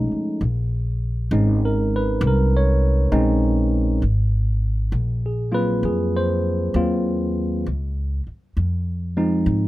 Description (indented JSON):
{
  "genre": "jazz ballad",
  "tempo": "66 BPM",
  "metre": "4/4",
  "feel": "swing 66% on 8ths",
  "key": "unclear",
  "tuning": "A4 = 439 Hz",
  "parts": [
    { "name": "tine electric piano", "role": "accompaniment", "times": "0.0-9.7 s", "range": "F3 to Db5", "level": "-21 LUFS", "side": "equal", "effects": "none" },
    { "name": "upright bass", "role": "bass", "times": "0.0-9.7 s", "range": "Ab1 to Ab2", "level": "-21 LUFS", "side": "equal", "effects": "none" }
  ],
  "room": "little or no reverb",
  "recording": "close, detailed microphones",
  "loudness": "-19 LUFS",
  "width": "side -16 dB against mid",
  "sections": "0.0-9.7 A section",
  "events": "none",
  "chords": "0.4 Bbm11; 4.0 Ab13; 7.7 Dbmaj9"
}